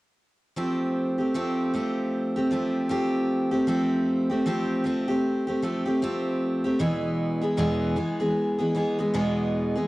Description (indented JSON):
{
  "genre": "pop",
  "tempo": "77 BPM",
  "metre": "4/4",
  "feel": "swing 60% on 16ths",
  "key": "unclear",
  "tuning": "A4 = 439 Hz",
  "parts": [
    { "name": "picked steel-string acoustic guitar", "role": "accompaniment", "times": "0.6-9.9 s", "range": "E2 to G#4", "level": "-23 LUFS", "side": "equal", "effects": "none" }
  ],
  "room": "moderate studio reverb, RT60 0.6 s",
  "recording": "home recording on cassette",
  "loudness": "-23 LUFS",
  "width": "side -19 dB against mid",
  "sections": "0.6-9.9 A section",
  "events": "none",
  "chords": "0.6 Fadd9; 6.8 E"
}